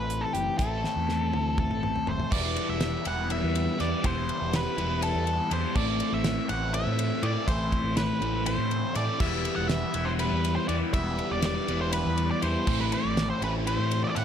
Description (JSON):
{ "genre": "psychedelic rock", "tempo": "243 BPM (eighths)", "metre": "7/8", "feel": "straight", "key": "E minor", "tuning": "A4 = 440 Hz", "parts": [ { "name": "octave-fuzz lead guitar", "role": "melody", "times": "0.0-14.2 s", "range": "G4 to F#5", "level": "-31 LUFS", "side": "equal", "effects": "distortion, tape echo" }, { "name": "crunchy overdriven guitar", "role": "riff", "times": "0.0-14.2 s", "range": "A2 to E4", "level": "-30 LUFS", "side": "left 1 dB", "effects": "phaser" }, { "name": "overdriven fingered electric bass", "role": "bass", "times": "0.0-14.2 s", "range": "E1 to A2", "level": "-31 LUFS", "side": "right 1 dB", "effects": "none" }, { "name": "damped 70s drum kit", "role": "drums", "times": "0.1-14.2 s", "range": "crash cymbal, hi-hat, kick drum, ride cymbal, snare drum, toms", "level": "-32 LUFS", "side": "equal", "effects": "none" }, { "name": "tonewheel organ", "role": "sustained chords", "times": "9.2-14.2 s", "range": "E3 to E4", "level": "-40 LUFS", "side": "right 4 dB", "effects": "none" } ], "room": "small room reverb", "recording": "none", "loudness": "-25 LUFS", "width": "side -8 dB against mid", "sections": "0.0-2.3 A section; 2.3-14.2 B section", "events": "drum fill 0.8-2.3", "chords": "0.0 Am; 2.3 Em; 5.8 Am; 9.2 Em; 12.7 Am", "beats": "0.10 0.35 | 0.60 0.84 1.09 1.34 1.58 1.83 2.08 | 2.32 2.57 2.81 3.06 3.31 3.55 3.80 | 4.04 4.29 4.53 4.78 5.02 5.27 5.51 | 5.76 6.00 6.25 6.50 6.74 6.99 7.24 | 7.48 7.73 7.97 8.22 8.47 8.71 8.96 | 9.21 9.46 9.70 9.95 10.20 10.45 10.69 | 10.94 11.19 11.44 11.69 11.94 12.18 12.43 | 12.68 12.93 13.18 13.43 13.67 13.92 14.17" }